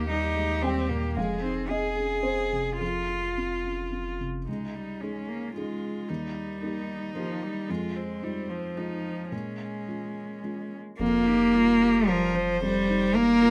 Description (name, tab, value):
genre	neoclassical piano and strings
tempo	111 BPM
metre	3/4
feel	rubato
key	unclear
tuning	A4 = 442 Hz
part	rich cello	second line	0.0-13.5 s	F3 to Ab4	-29 LUFS	equal	none
part	clear viola	accompaniment	0.0-13.5 s	C4 to C5	-38 LUFS	equal	none
part	felt-muted upright piano	accompaniment	0.0-13.5 s	Db2 to G5	-37 LUFS	equal	none
part	punchy sub bass	bass	0.0-4.5, 11.0-13.5 s	F1 to Eb2	-37 LUFS	equal	none
room	moderate small room reverb, RT60 0.5 s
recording	rough home demo mix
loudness	-28 LUFS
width	mono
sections	0.0-4.5 A section; 4.5-11.0 B section; 11.0-13.5 C section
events	none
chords	0.0 Eb; 1.2 Fm7; 2.8 Fm; 4.5 Dbsus2; 6.1 Eb; 7.7 Fm7; 9.3 Bbm7; 11.0 Ebadd9/F